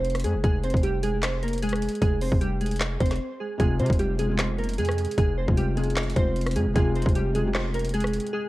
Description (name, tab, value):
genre	hip hop, trap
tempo	152 BPM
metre	4/4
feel	half-time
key	F minor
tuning	A4 = 440 Hz
part	glassy digital keys	melody	0.0-8.5 s	G3 to C5	-28 LUFS	right 1 dB	chorus
part	hard-hitting 808-style bass	bass	0.0-8.2 s	F1 to C3	-27 LUFS	equal	none
part	trap drum kit	drums	0.0-8.3 s	handclaps, hi-hat, kick drum, rim click, snare drum	-26 LUFS	equal	none
part	felt-muted upright piano	accompaniment	3.6-8.5 s	C3 to G4	-30 LUFS	left 1 dB	none
room	digital ambience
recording	worn, warbling old tape, cassette tape, warbly pitch drift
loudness	-22 LUFS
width	side -17 dB against mid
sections	0.0-8.5 A section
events	break 0.0-3.6; drums muted 8.3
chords	0.0 Fm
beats	0.04 | 0.44 0.83 1.23 1.62 | 2.02 2.41 2.81 3.20 | 3.60 3.99 4.39 4.78 | 5.18 5.57 5.96 6.36 | 6.75 7.15 7.54 7.94 | 8.33